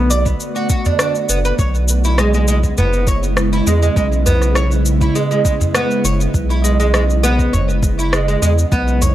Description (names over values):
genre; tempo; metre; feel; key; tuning
organic downtempo; 101 BPM; 4/4; straight; unclear; A4 = 440 Hz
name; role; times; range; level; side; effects
ethereal airy pad; sustained chords; 0.0-9.1 s; C#3 to F#4; -22 LUFS; right 1 dB; ensemble chorus, built-in reverb, sidechain pumping
oud; arpeggios; 0.0-9.1 s; G#3 to D5; -19 LUFS; right 2 dB; tape echo
round analog bass; bass; 0.0-9.1 s; F#1 to E2; -16 LUFS; equal; sidechain pumping
electronic cabasa and rim click; drums; 0.1-9.1 s; none; -21 LUFS; left 1 dB; none
electronic kick drum; drums; 0.3-8.8 s; none; -18 LUFS; equal; none
udu; percussion; 0.9-9.1 s; none; -18 LUFS; equal; none
room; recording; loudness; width
little or no reverb; dry, gritty hardware recording; -13 LUFS; side -13 dB against mid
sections
0.0-9.1 A section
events
none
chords
0.0 Bm7; 1.6 C#m7